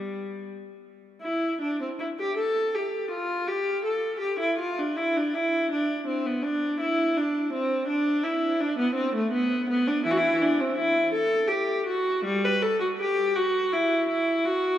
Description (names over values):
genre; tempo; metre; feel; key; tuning
classical, baroque-style suite movement for unaccompanied viola; 82 BPM; 3/4; rubato; unclear; A4 = 442 Hz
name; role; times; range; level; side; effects
rich viola; solo; 0.0-14.8 s; E3 to B4; -24 LUFS; equal; none
room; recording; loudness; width
wet church reverb, RT60 3.6 s; none; -23 LUFS; side -11 dB against mid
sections
0.0-1.2 A section; 1.2-14.8 A section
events
none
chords
none